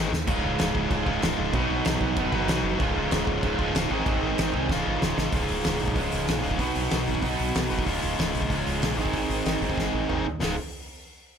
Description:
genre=punk rock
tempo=189 BPM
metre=4/4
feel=straight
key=Db major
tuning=A4 = 444 Hz
part: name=overdriven electric guitar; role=riff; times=0.0-10.5 s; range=Db2 to Cb5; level=-28 LUFS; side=left 7 dB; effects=none
part: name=woody fretless electric bass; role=bass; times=0.0-10.6 s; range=Db1 to Eb2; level=-31 LUFS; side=equal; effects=none
part: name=loose indie drum kit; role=drums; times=0.1-10.5 s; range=crash cymbal, hi-hat, kick drum, snare drum, splash cymbal, toms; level=-29 LUFS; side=equal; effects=none
part: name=distorted electric guitar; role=riff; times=0.3-10.5 s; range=Db2 to Cb5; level=-29 LUFS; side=right 15 dB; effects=distortion
room=light reverb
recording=none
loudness=-23 LUFS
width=side -7 dB against mid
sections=0.0-5.3 A section; 5.3-10.4 B section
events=drum fill 0.1, 4.7-5.3, 9.8-10.4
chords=0.3 Db; 1.5 Cb; 2.8 Db; 3.9 Ab; 4.7 Db; 6.6 Cb; 7.9 Db; 9.0 Ab; 10.4 Db

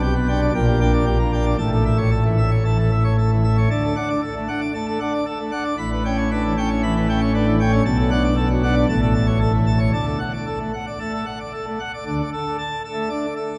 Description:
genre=classical, organ toccata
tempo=115 BPM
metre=4/4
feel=straight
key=D major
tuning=A4 = 441 Hz
part: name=pipe organ, plenum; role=solo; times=0.0-13.6 s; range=A1 to B5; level=-20 LUFS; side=equal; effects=none
room=wet cathedral reverb, RT60 5.4 s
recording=dark, warm production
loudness=-20 LUFS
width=mono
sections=0.0-12.1 A section; 12.1-13.6 A section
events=none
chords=0.0 G/B; 0.5 Gm/Bb; 1.6 A; 3.7 D; 5.8 A9; 7.8 Bm7; 8.9 A; 9.9 D; 12.1 D5

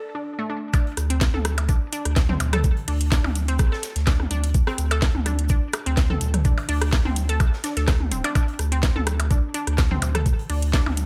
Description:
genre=minimal techno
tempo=126 BPM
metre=4/4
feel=swing 54% on 16ths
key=unclear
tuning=A4 = 440 Hz
part: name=resonant blip pluck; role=riff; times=0.1-10.8 s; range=A3 to A4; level=-33 LUFS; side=equal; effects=chorus, sidechain pumping, digital delay
part: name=electronic kick drum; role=drums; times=0.7-10.8 s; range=none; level=-23 LUFS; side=equal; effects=small room ambience
part: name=garage drum kit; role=drums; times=0.7-11.1 s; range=hi-hat, snare drum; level=-31 LUFS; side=equal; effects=small room ambience
part: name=huge arena drum kit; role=drums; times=0.7-11.1 s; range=hi-hat, shaker, snare drum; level=-42 LUFS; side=equal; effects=sidechain pumping on hats, high-pass filter on hats, small room ambience, high-pass filter on snare, sidechain pumping on perc, high-pass filter on perc, high-pass filter on room
part: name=minimal click drum kit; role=percussion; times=0.7-11.0 s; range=percussion blips, rim click, toms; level=-31 LUFS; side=equal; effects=overdrive, small room ambience
part: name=saturated sub bass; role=bass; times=1.0-11.1 s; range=D1 to D2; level=-26 LUFS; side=equal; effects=sidechain pumping
room=little or no reverb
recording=none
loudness=-22 LUFS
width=mono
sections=0.7-11.1 A section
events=break 0.0-0.7; drop 0.7-11.1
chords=0.0 D5

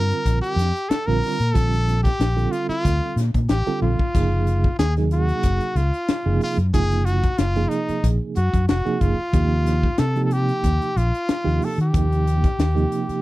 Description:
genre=electric jazz fusion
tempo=92 BPM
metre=4/4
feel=swing 53% on 16ths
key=unclear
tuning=A4 = 438 Hz
part: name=brilliant trumpet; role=melody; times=0.0-13.2 s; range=Eb4 to Bb4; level=-25 LUFS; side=equal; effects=slapback echo
part: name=reed electric piano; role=accompaniment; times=0.0-13.2 s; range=C3 to Bb4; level=-25 LUFS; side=right 5 dB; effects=fast tremolo
part: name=fretless electric bass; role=bass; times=0.0-13.1 s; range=F1 to Eb3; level=-20 LUFS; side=equal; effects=none
part: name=crisp fusion drum kit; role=drums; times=0.1-13.2 s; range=hi-hat, kick drum, snare drum, splash cymbal, toms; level=-23 LUFS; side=left 1 dB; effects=none
room=little or no reverb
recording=none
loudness=-18 LUFS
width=side -17 dB against mid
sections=0.0-13.2 A section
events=drum fill 3.8-4.2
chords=0.0 Bbmaj9; 4.2 Gbmaj9; 9.3 Ebadd9

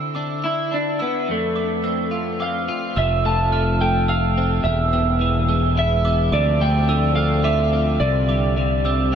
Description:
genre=post-rock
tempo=107 BPM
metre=3/4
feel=straight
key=unclear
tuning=A4 = 440 Hz
part: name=clean electric guitar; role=arpeggios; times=0.0-9.2 s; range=E2 to F4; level=-25 LUFS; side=left 3 dB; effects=analog chorus, ping-pong delay
part: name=glockenspiel with hard plastic mallets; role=arpeggios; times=0.0-9.2 s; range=D6 to F6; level=-28 LUFS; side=right 6 dB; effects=ping-pong delay
part: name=electric guitar through a small old amp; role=melody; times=0.5-8.5 s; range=A3 to A5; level=-22 LUFS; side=right 1 dB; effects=analog chorus, ping-pong delay
part: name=brassy analog pad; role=sustained chords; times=3.0-9.2 s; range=D3 to D5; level=-28 LUFS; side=right 1 dB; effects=chorus
part: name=growling fingered electric bass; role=bass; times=3.0-9.2 s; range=E1 to D2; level=-20 LUFS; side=equal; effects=overdrive
room=moderate huge ambient reverb, RT60 8.1 s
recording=dreamy mix soaked in reverb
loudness=-17 LUFS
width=side -8 dB against mid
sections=0.0-3.0 A section; 3.0-9.2 B section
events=none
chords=0.0 Dsus2; 1.3 F; 3.0 Fmaj7; 4.6 E; 6.3 Dm7; 8.0 Csus2

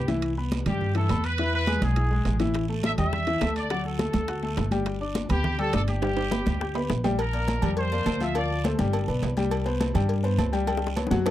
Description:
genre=latin, salsa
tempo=207 BPM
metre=4/4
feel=straight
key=G major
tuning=A4 = 440 Hz
part: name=bright trumpet section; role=melody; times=0.0-8.6 s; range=G4 to E5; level=-30 LUFS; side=right 1 dB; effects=none
part: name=bright upright piano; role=accompaniment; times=0.0-11.3 s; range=E3 to G6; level=-29 LUFS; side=left 3 dB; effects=none
part: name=upright bass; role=bass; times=0.0-11.3 s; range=G1 to G2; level=-27 LUFS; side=right 1 dB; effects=none
part: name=congas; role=percussion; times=0.1-11.3 s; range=none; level=-31 LUFS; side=equal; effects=none
part: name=guiro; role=percussion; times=0.1-11.3 s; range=none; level=-44 LUFS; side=right 9 dB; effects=none
part: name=timbales and agogo bells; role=percussion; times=0.1-11.3 s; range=none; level=-35 LUFS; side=right 8 dB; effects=none
part: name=bongos and cowbell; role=percussion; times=2.6-11.3 s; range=none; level=-34 LUFS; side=left 6 dB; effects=none
room=little or no reverb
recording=dry, close 1970s-style studio recording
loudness=-23 LUFS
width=side -13 dB against mid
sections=0.0-7.2 A section; 7.2-11.3 B section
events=drum fill 6.0-7.2, 10.7-11.3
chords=0.2 Cmaj7; 1.4 E; 2.5 A5; 3.7 D; 4.9 G; 7.2 Bb69; 8.4 Dm7; 8.9 G; 9.5 C5; 10.7 Gmaj7#11/C#

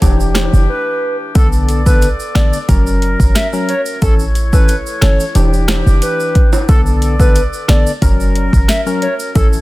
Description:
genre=dancehall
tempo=90 BPM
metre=4/4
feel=straight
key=B minor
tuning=A4 = 440 Hz
part: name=percussive organ stab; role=accompaniment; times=0.0-9.6 s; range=D3 to A#4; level=-20 LUFS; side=left 3 dB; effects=chorus
part: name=mellow woodwind section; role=sustained chords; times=0.0-9.6 s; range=E3 to D5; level=-25 LUFS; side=equal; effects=sidechain pumping
part: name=short 808-style bass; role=bass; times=0.0-9.6 s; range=E1 to B1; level=-13 LUFS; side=equal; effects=none
part: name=afro-pop drum kit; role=drums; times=0.0-9.5 s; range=hi-hat, kick drum, rim click, snare drum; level=-13 LUFS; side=equal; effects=none
part: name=timbales and tube shaker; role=percussion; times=0.0-9.6 s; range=none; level=-26 LUFS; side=right 3 dB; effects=none
part: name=hollow clarinet-like synth lead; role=melody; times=0.7-9.5 s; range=A4 to E5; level=-20 LUFS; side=equal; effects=chorus, tape echo
room=digital ambience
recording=dense, heavily limited modern master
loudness=-10 LUFS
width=side -18 dB against mid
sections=0.0-9.6 A section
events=break 0.7-1.4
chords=0.0 Em7; 1.4 Bm7; 2.7 F#; 4.0 A; 5.4 Em7; 6.7 Bm7; 8.0 F#

